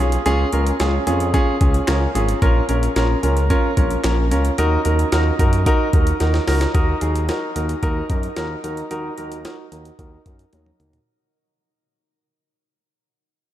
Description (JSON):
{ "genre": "synth-pop", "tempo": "111 BPM", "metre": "4/4", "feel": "straight", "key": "Eb minor", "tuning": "A4 = 440 Hz", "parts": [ { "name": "warm concert grand piano", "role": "accompaniment", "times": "0.0-11.0 s", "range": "Db4 to Db5", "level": "-20 LUFS", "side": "right 1 dB", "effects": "low-pass filter, shimmer reverb" }, { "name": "smooth gliding synth bass", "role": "bass", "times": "0.0-11.0 s", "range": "Ab1 to Gb2", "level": "-20 LUFS", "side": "equal", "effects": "none" }, { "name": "jungle sampler-style drum kit", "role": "drums", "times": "0.1-11.1 s", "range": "handclaps, hi-hat, kick drum, snare drum, toms", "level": "-22 LUFS", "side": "equal", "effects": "none" } ], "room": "moderate cathedral reverb, RT60 7.2 s", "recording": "dreamy mix soaked in reverb", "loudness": "-16 LUFS", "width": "side -12 dB against mid", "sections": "0.0-6.7 A section; 6.7-11.1 B section", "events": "drum fill 6.2-6.7, 10.5-11.1; fade-out 6.7-11.1; filter sweep on grand piano 6.7-11.1", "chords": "0.0 Db; 2.4 Bbm; 4.6 Ebm" }